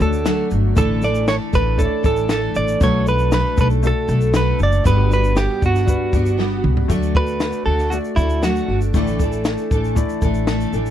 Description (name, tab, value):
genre	acoustic pop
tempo	117 BPM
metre	4/4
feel	straight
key	D major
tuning	A4 = 439 Hz
part	direct-recorded clean electric guitar	melody	0.0-8.8 s	E4 to D5	-21 LUFS	right 3 dB	none
part	fingerpicked steel-string acoustic guitar	accompaniment	0.0-10.9 s	A2 to A4	-23 LUFS	equal	double-tracked left and right
part	warm upright piano	accompaniment	0.0-10.9 s	G3 to D5	-27 LUFS	left 7 dB	none
part	upright bass	bass	0.0-10.9 s	F#1 to D2	-20 LUFS	equal	none
part	compact cocktail drum kit	drums	0.0-10.9 s	kick drum, shaker, snare drum, toms	-21 LUFS	equal	none
room	little or no reverb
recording	dry, close 1970s-style studio recording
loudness	-16 LUFS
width	side -11 dB against mid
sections	0.0-6.9 A section; 6.9-10.9 B section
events	drum fill 6.4-6.9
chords	0.0 D; 0.8 Asus4; 2.8 Bm7; 4.9 Gmaj7; 6.9 D; 8.9 Asus4